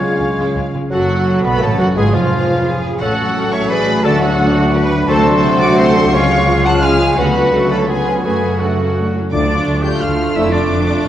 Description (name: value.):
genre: classical, dramatic, fast romantic movement for symphony orchestra.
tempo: 173 BPM.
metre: 3/4.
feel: straight.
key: F# minor.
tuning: A4 = 440 Hz.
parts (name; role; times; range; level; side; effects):
rich symphonic violin section; melody; 0.0-11.1 s; E#5 to G6; -23 LUFS; left 1 dB; none.
clear clarinet; second line; 0.0-11.1 s; E#4 to C#5; -25 LUFS; left 1 dB; none.
clear oboe; second line; 0.0-11.1 s; E#4 to G5; -25 LUFS; right 1 dB; none.
silver concert flute; second line; 0.0-10.9 s; G#4 to G#6; -22 LUFS; left 1 dB; none.
mellow bassoon; accompaniment; 0.0-11.1 s; E#3 to D4; -22 LUFS; right 1 dB; none.
rich symphonic viola section; accompaniment; 0.0-11.1 s; D3 to G4; -21 LUFS; right 2 dB; none.
dark French horn section; sustained chords; 0.0-10.5 s; E#3 to G#4; -22 LUFS; left 1 dB; none.
mellow trombone section; sustained chords; 0.0-10.5 s; F2 to B3; -23 LUFS; right 2 dB; none.
concert harp; arpeggios; 0.0-11.1 s; F2 to B5; -22 LUFS; left 3 dB; none.
warm symphonic violin section; second line; 0.2-11.1 s; G#3 to F#5; -26 LUFS; left 2 dB; none.
clear studio double bass section; bass; 0.2-11.1 s; E#1 to F#2; -20 LUFS; right 2 dB; none.
rich symphonic cello section; bass; 0.2-11.1 s; D2 to B4; -22 LUFS; right 2 dB; none.
room: wet scoring stage reverb, RT60 1.7 s.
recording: worn, warbling old tape, cassette tape, warbly pitch drift.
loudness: -12 LUFS.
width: side -11 dB against mid.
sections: 0.9-9.3 A section; 9.3-11.1 B section.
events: none.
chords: 0.0 C#; 0.9 F#m; 2.0 C#7; 3.0 F#m/A; 4.1 D; 5.1 D7; 6.1 C#; 7.2 Bm/D; 7.5 F#m/C#; 7.9 C#7; 8.3 F#m; 9.3 Dm; 10.4 Dm/F.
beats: 0.20 0.56 | 0.92 1.27 1.62 | 1.98 2.33 2.67 | 3.02 3.37 3.71 | 4.06 4.40 4.75 | 5.10 5.44 5.79 | 6.13 6.48 6.83 | 7.18 7.53 7.89 | 8.25 8.62 8.98 | 9.34 9.68 10.03 | 10.36 10.70 11.04.